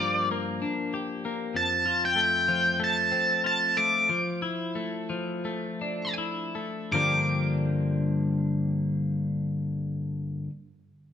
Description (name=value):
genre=rock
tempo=78-97 BPM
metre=4/4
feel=straight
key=G dorian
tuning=A4 = 440 Hz
part: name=octave-fuzz lead guitar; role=melody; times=0.0-10.4 s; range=D5 to D6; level=-24 LUFS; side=equal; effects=distortion
part: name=twelve-string electric guitar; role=arpeggios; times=0.0-10.5 s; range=F2 to G4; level=-28 LUFS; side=left 2 dB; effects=warbly pitch drift
room=wet large studio reverb, RT60 1.5 s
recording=band playing live in one room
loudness=-25 LUFS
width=side -8 dB against mid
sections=0.0-6.9 A section; 6.9-10.0 B section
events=slowing down 1.6-6.9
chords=0.0 Gm7; 1.6 F; 4.1 Dmadd9/F; 6.9 Gm7